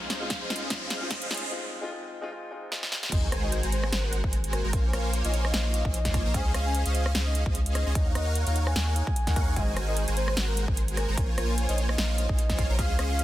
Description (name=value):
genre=future bass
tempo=149 BPM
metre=4/4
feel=swing 55% on 16ths, half-time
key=unclear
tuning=A4 = 439 Hz
part: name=warm grand piano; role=accompaniment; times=0.0-3.1 s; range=Ab3 to F4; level=-38 LUFS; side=left 2 dB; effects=sidechain pumping, tape echo
part: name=supersaw chords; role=riff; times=0.0-13.2 s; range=Ab3 to Bb5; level=-32 LUFS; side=equal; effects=ensemble chorus, sidechain pumping
part: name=saturated sub bass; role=bass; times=0.0-13.2 s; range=Ab1 to Eb2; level=-27 LUFS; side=equal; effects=sidechain pumping
part: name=riser and sub drop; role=sound effects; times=0.0-4.7 s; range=none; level=-35 LUFS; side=equal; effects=none
part: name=big-room dance drum kit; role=drums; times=0.1-13.2 s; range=crash cymbal, hi-hat, rim click, snare drum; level=-32 LUFS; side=equal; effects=studio reverb
part: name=electronic kick drum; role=drums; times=0.3-12.9 s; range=none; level=-28 LUFS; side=equal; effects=studio reverb
part: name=soft octave-layered synth lead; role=melody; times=3.1-13.2 s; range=Bb4 to Ab5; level=-35 LUFS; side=left 2 dB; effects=chorus, tremolo, sidechain pumping, tape echo
room=little or no reverb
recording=dense, heavily limited modern master, high-pass filter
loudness=-25 LUFS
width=side -14 dB against mid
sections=0.0-3.1 A section; 3.1-13.2 B section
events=build-up 0.0-3.1; drum fill 0.0-1.5, 2.7-3.1; riser 0.0-1.5; break 1.5-3.1; drop 3.1-13.2; impact 3.1-4.7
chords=0.0 Dbmaj7; 1.5 Ab6; 3.1 Ab9; 4.7 Bbm7; 6.3 Dbmaj7; 8.0 Ebm7; 9.6 Ab9; 11.2 Bbm7